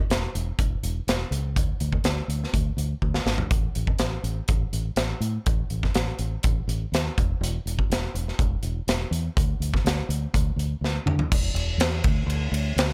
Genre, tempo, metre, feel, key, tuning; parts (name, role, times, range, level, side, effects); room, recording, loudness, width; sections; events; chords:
classic rock; 123 BPM; 4/4; straight; A4 = 438 Hz
fingered electric bass; bass; 0.1-12.9 s; E1 to D3; -29 LUFS; equal
big rock drum kit; drums; 0.1-12.9 s; crash cymbal, hi-hat, kick drum, ride cymbal, snare drum, toms; -27 LUFS; equal
little or no reverb; -26 LUFS; mono
0.0-11.3 A section; 11.3-12.9 B section
drum fill 3.0-3.5, 10.8-11.3